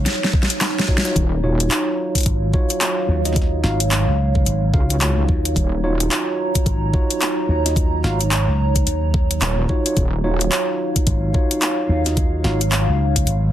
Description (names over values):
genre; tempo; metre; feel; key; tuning
glitch hop; 109 BPM; 4/4; swing 60% on 16ths; Eb minor; A4 = 440 Hz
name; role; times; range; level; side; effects
dark analog pad; sustained chords; 0.0-13.5 s; Gb3 to Bb5; -25 LUFS; right 2 dB; chorus, phaser, sidechain pumping
slap bass with an envelope filter; bass; 0.0-13.5 s; Ab1 to Eb2; -19 LUFS; equal; none
dubstep drum kit; drums; 0.1-13.4 s; handclaps, hi-hat, snare drum; -22 LUFS; left 1 dB; overdrive
electronic kick drum; drums; 0.3-13.2 s; none; -19 LUFS; equal; overdrive
mellow tine electric piano; stabs; 0.9-12.6 s; Eb4 to F5; -24 LUFS; equal; sidechain pumping, ping-pong delay
wobble bass; bass; 1.2-6.1, 9.4-10.5 s; Eb1 to Db2; -20 LUFS; equal; chorus
room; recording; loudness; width
light reverb; dense, heavily limited modern master, lossy compression artefacts; -16 LUFS; side -12 dB against mid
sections
0.0-13.5 A section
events
drum fill 0.1-1.2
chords
0.0 Ebm9